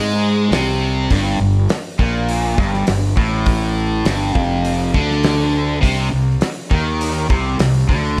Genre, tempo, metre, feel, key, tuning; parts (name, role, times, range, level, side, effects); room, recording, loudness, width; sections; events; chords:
psychedelic rock; 102 BPM; 4/4; straight; A4 = 440 Hz
cranked stack guitar; riff; 0.0-8.2 s; F2 to Ab3; -20 LUFS; equal; overdrive, phaser
fuzz fingered electric bass; bass; 0.0-8.2 s; F1 to Ab2; -23 LUFS; equal; overdrive
cloth-damped thuddy drum kit; drums; 0.5-8.0 s; hi-hat, kick drum, snare drum; -23 LUFS; equal
light reverb; -17 LUFS; mono
0.0-8.2 A section
0.0 N.C.; 1.1 Gmadd9; 5.8 Cm